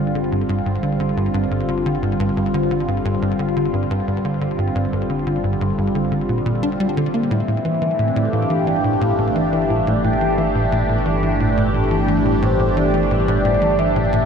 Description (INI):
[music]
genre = ambient, sequencer-driven space music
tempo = 88 BPM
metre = 4/4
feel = straight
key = unclear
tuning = A4 = 439 Hz
[part]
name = phased analog pad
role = sustained chords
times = 0.0-14.3 s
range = D3 to G4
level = -20 LUFS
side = equal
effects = phaser, chorus
[part]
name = tight sequencer bass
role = riff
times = 0.0-14.2 s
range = G2 to D4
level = -21 LUFS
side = equal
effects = wide subtle chorus, ping-pong delay
[part]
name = analog drone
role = bass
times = 0.0-14.3 s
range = G1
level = -27 LUFS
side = equal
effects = chorus
[part]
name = mellow horn-like synth lead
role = melody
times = 7.3-14.3 s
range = C5 to G5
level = -23 LUFS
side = left 1 dB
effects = wide subtle chorus, ping-pong delay
[sound]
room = wet cathedral reverb, RT60 7.0 s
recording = in a vast, echoing space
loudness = -17 LUFS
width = side -7 dB against mid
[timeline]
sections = 0.0-14.3 A section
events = fade-in on synth drone 0.0-14.3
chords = 0.0 G7(no3); 7.3 Am7/G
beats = 0.49 1.17 | 1.86 2.54 3.22 3.90 | 4.58 5.26 5.95 6.63 | 7.31 7.99 8.67 9.36 | 10.04 10.72 11.40 12.08 | 12.77 13.45 14.13